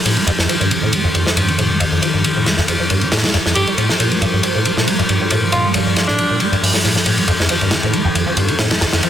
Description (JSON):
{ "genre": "breakbeat, breaks", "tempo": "137 BPM", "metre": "4/4", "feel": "swing 54% on 16ths", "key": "unclear", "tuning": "A4 = 439 Hz", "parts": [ { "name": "phased analog pad", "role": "sustained chords", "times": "0.0-9.1 s", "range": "F2 to D5", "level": "-21 LUFS", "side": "equal", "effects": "phaser, chorus" }, { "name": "deep acid bass", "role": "riff", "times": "0.0-9.1 s", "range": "F2 to Bb3", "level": "-18 LUFS", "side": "equal", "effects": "ensemble chorus" }, { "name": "crunchy breakbeat drum kit", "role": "drums", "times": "0.1-9.1 s", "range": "hi-hat, ride cymbal, snare drum", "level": "-16 LUFS", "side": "left 1 dB", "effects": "high-pass filter on cymbals, high-pass filter on hats, high-pass filter on snare, high-pass filter on room" }, { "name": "shaker", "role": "drums", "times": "0.1-9.1 s", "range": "none", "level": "barely audible", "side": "none", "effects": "none" }, { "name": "growling alto saxophone", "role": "melody", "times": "3.6-6.4 s", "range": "D4 to G4", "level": "-22 LUFS", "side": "equal", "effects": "old record sound, dub echo" } ], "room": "moderate plate reverb, RT60 2.3 s", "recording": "dense, heavily limited modern master", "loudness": "-13 LUFS", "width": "side -10 dB against mid", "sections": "0.0-9.1 A section", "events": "filter sweep on analog synth pad 0.0-9.1", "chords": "0.1 F7; 3.6 Gm11; 7.1 F7" }